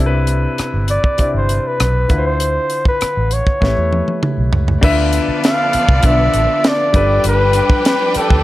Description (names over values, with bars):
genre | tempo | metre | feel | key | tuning
lush 1970s-style soul | 99 BPM | 4/4 | straight | D dorian | A4 = 439 Hz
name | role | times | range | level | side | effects
warm grand piano | accompaniment | 0.0-8.4 s | C3 to E5 | -21 LUFS | left 3 dB | none
vintage muted fingered electric bass | bass | 0.0-8.4 s | G1 to E2 | -17 LUFS | equal | none
tight funk drum kit | drums | 0.3-8.4 s | crash cymbal, hi-hat, kick drum, rim click, snare drum, toms | -16 LUFS | equal | none
warm flugelhorn | melody | 0.9-8.4 s | A4 to F5 | -17 LUFS | equal | none
warm studio string section | second line | 4.8-8.4 s | B3 to G5 | -23 LUFS | right 1 dB | none
clear studio string section | sustained chords | 4.8-8.4 s | F3 to B4 | -25 LUFS | equal | none
room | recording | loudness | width
light reverb, small room reverb | none | -12 LUFS | side -16 dB against mid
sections
0.0-4.8 A section; 4.8-8.4 B section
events
drum fill 3.6-4.8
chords
0.0 Cmaj9; 2.1 Dm7; 3.6 A7; 4.8 Dm69; 6.9 G7